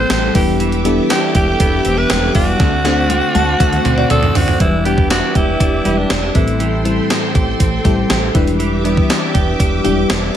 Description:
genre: 1980s-style pop.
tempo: 120 BPM.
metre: 4/4.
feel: straight.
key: E minor.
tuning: A4 = 436 Hz.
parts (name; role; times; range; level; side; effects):
raspy alto saxophone; melody; 0.0-6.9 s; D4 to C5; -19 LUFS; right 1 dB; digital delay.
FM electric piano with soft pad layer; accompaniment; 0.0-10.4 s; A2 to C5; -19 LUFS; left 3 dB; chorus.
string machine, violas; sustained chords; 0.0-10.4 s; G4 to D6; -24 LUFS; equal; ensemble chorus.
direct-recorded clean electric guitar; riff; 0.0-10.4 s; E3 to G4; -23 LUFS; right 5 dB; lush chorus, digital delay.
woody fretless electric bass; bass; 0.0-10.3 s; E1 to D2; -19 LUFS; equal; analog chorus.
gated 80s digital drum machine; drums; 0.1-10.4 s; hi-hat, kick drum, snare drum, tambourine, toms; -16 LUFS; equal; gated reverb, gated reverb snare.
shimmering bell with halo; second line; 2.8-4.6 s; D5 to A5; -23 LUFS; left 2 dB; ensemble chorus, digital delay.
room: little or no reverb.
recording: none.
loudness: -12 LUFS.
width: side -10 dB against mid.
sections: 0.0-4.6 A section; 4.6-10.4 B section.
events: drum fill 2.6-4.6.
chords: 0.4 Em7; 2.6 D7; 4.6 Em7; 6.4 Am7; 8.4 Em7.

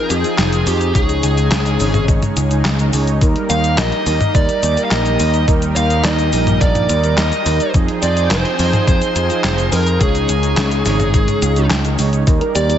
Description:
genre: synthwave.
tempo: 106 BPM.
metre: 4/4.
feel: straight.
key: Eb major.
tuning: A4 = 440 Hz.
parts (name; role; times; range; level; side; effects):
bluesy overdriven lead guitar; melody; 0.0-12.8 s; G4 to F5; -20 LUFS; equal; distortion, digital delay.
analog string pad; sustained chords; 0.0-12.8 s; F3 to G5; -24 LUFS; equal; ensemble chorus, sidechain pumping.
mellow synth brass; stabs; 0.0-12.8 s; Db3 to Db5; -22 LUFS; right 4 dB; chorus.
picked electric bass; bass; 0.1-12.8 s; F1 to F2; -17 LUFS; equal; none.
detuned 8-bit digital drum machine; drums; 0.1-12.8 s; cabasa, handclaps, hi-hat, snare drum, toms; -20 LUFS; left 1 dB; gated reverb.
electronic kick drum; drums; 0.9-12.4 s; none; -15 LUFS; equal; none.
thumb-piano-like synth pluck; arpeggios; 12.3-12.7 s; Eb4 to Bb4; -22 LUFS; left 1 dB; chorus.
room: light reverb.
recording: nothing above 7.9 kHz.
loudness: -13 LUFS.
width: side -10 dB against mid.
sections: 0.0-12.8 A section.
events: none.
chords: 0.0 Fm7; 0.9 Dbsus2; 3.2 Eb; 7.7 Fm7; 10.0 Dbsus2; 12.3 Eb.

